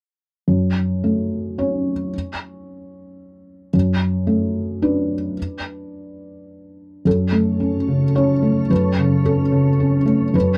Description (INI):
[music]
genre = neoclassical piano and strings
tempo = 109 BPM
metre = 3/4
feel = rubato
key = unclear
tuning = A4 = 440 Hz
[part]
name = felt-muted upright piano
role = accompaniment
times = 0.5-10.6 s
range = F#2 to C#5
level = -20 LUFS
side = equal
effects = none
[part]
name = glassy FM pad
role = sustained chords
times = 7.5-10.6 s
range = B3 to D5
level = -31 LUFS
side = equal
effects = ensemble chorus, built-in reverb
[sound]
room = light reverb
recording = dry, close 1970s-style studio recording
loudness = -19 LUFS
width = mono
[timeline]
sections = 0.5-7.1 A section; 7.1-10.6 B section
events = none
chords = 0.5 F#m; 3.7 Bm7/F#; 7.1 F#m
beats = | 0.48 1.03 1.58 | 2.13 2.67 3.21 | 3.74 4.27 4.82 | 5.37 5.92 6.48 | 7.06 7.61 8.16 | 8.70 9.26 9.80 | 10.34